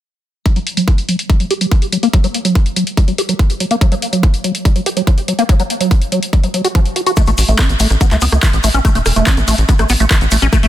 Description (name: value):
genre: psychedelic trance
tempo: 143 BPM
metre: 4/4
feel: straight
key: unclear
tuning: A4 = 440 Hz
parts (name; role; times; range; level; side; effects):
- liquid acid bass; riff; 0.5-10.7 s; E#3 to G4; -17 LUFS; moving between left 5 dB and right 3 dB; chorus, auto-pan, sidechain pumping, digital delay
- electronic kick drum; drums; 0.5-10.6 s; none; -12 LUFS; equal; none
- techno drum kit; drums; 0.5-10.7 s; handclaps, hi-hat, rim click; -20 LUFS; equal; overdrive, low-pass filter on hats, low-pass filter on snare
- tube shaker; percussion; 7.2-10.7 s; none; -26 LUFS; left 5 dB; none
- tight sequencer bass; bass; 7.3-10.7 s; E1 to C#2; -14 LUFS; equal; none
room: little or no reverb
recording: dense, heavily limited modern master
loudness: -11 LUFS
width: side -13 dB against mid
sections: 0.5-10.7 A section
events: filter sweep on acid bass 0.5-10.7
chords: 0.5 N.C.; 7.2 A5